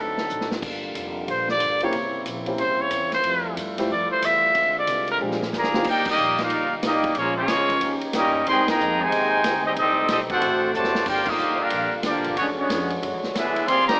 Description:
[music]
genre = jazz, big band swing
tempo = 184 BPM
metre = 4/4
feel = swing 63% on 8ths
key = Eb major from 5.9 s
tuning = A4 = 440 Hz
[part]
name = warm trumpet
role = melody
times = 0.0-5.2 s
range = A4 to E5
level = -22 LUFS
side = equal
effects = none
[part]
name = brilliant trombone section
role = sustained chords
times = 0.0-14.0 s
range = Bb2 to C#5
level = -31 LUFS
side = equal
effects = none
[part]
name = upright bass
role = bass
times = 0.0-14.0 s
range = F1 to Ab2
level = -37 LUFS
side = equal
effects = none
[part]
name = swinging big-band drum kit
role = drums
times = 0.2-13.9 s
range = crash cymbal, hi-hat, kick drum, ride cymbal, snare drum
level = -30 LUFS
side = equal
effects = none
[part]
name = warm grand piano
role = accompaniment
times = 1.8-5.9 s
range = Ab3 to C5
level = -28 LUFS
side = equal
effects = none
[part]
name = clear trumpet section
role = melody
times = 5.6-14.0 s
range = Bb3 to C6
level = -21 LUFS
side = equal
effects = none
[part]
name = mellow trombone section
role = second line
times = 5.6-14.0 s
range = C3 to G4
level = -26 LUFS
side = equal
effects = none
[sound]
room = moderate concert hall reverb, RT60 2.0 s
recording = AM radio sound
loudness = -20 LUFS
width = side -29 dB against mid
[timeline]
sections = 0.0-5.9 A section; 5.9-14.0 B section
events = trumpet solo 0.0-5.9; drum fill 0.3-0.6, 5.2-5.9, 10.7-11.1; band accent 6.0, 8.6, 11.2, 13.8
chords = 0.0 D7b9; 0.6 Gm7; 1.9 C7b9; 3.2 Fmaj9; 4.6 Dm7b5; 5.2 Bb13; 5.9 Ebmaj7; 7.2 Bbm7; 7.8 Eb7; 8.5 Abmaj7; 9.8 Am7b5; 10.4 D7; 11.1 Gm7; 12.4 E13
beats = 0.30 | 0.63 0.96 1.28 1.61 | 1.94 2.26 2.59 2.92 | 3.25 3.57 3.90 4.22 | 4.55 4.88 5.21 5.53 | 5.86 6.18 6.51 6.84 | 7.16 7.49 7.81 8.14 | 8.46 8.79 9.12 9.44 | 9.77 10.09 10.42 10.74 | 11.07 11.40 11.72 12.05 | 12.37 12.70 13.03 13.35 | 13.68

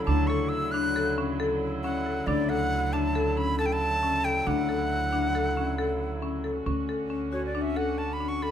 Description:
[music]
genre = contemporary instrumental, chamber music in an uneven meter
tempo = 136 BPM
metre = 5/4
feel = straight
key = D major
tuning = A4 = 440 Hz
[part]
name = breathy bright jazz flute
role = melody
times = 0.0-8.5 s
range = C#5 to F#6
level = -30 LUFS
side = right 1 dB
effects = none
[part]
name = warm studio string section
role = sustained chords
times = 0.0-8.5 s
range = C#3 to F#4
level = -35 LUFS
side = right 3 dB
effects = none
[part]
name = marimba with medium hard mallets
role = arpeggios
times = 0.0-8.5 s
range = C#4 to A4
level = -29 LUFS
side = left 5 dB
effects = none
[part]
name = upright bass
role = bass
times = 0.0-8.5 s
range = D2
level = -32 LUFS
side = right 3 dB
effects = none
[sound]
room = moderate recital hall reverb, RT60 1.5 s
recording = none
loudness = -25 LUFS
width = side -9 dB against mid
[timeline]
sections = 0.0-6.7 A section; 6.7-8.5 B section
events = none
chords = 0.0 Dmaj9; 6.7 Dmaj7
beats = | 0.07 0.51 0.95 1.39 1.83 | 2.27 2.71 3.15 3.59 4.03 | 4.47 4.91 5.34 5.78 6.22 | 6.66 7.10 7.54 7.98 8.42

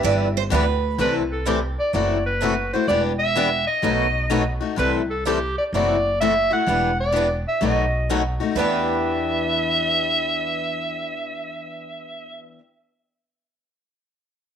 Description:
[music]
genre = acoustic string swing (jazz manouche)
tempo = 127 BPM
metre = 4/4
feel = swing 66% on 8ths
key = E minor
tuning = A4 = 439 Hz
[part]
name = bright clarinet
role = melody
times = 0.0-12.5 s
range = G4 to F#5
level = -22 LUFS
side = right 1 dB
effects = slapback echo
[part]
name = picked steel-string acoustic guitar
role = second line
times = 0.0-1.0, 8.6-12.5 s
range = B4 to D5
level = -27 LUFS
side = right 10 dB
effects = none
[part]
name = picked steel-string acoustic guitar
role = accompaniment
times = 0.0-12.6 s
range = B2 to A4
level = -25 LUFS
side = left 8 dB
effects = none
[part]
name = picked swing-style acoustic guitar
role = accompaniment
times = 0.0-12.6 s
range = B2 to B4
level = -28 LUFS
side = right 9 dB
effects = none
[part]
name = upright bass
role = bass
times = 0.0-12.5 s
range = E1 to E2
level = -26 LUFS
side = equal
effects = none
[sound]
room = moderate spring reverb, RT60 1.3 s, studio reverb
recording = 1960s-style stereo with parts hard left and right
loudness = -19 LUFS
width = side -8 dB against mid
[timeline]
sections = 1.0-8.6 A section; 8.6-12.3 B section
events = none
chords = 0.0 Em7; 1.0 C6; 1.9 F#m7b5; 2.9 Em7; 3.8 B7; 4.8 C6; 5.7 F#m7b5; 6.7 Em7; 7.6 B7; 8.6 Em7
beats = 0.05 0.52 | 0.99 1.47 1.94 2.41 | 2.88 3.36 3.83 4.30 | 4.78 5.25 5.72 6.20 | 6.67 7.14 7.62 8.09 | 8.56 9.04 9.51 9.98 | 10.46 10.93 11.40 11.87

